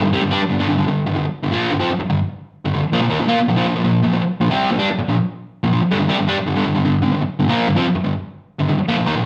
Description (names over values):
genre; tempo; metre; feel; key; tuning
rock; 161 BPM; 4/4; straight; G minor; A4 = 440 Hz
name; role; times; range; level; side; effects
fuzz guitar; solo; 0.0-9.2 s; G2 to F4; -18 LUFS; equal; distortion
room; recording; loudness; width
moderate large studio reverb, RT60 0.9 s; band playing live in one room; -18 LUFS; mono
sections
0.0-9.3 A section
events
none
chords
0.0 Gm; 2.9 Bb5; 5.9 G5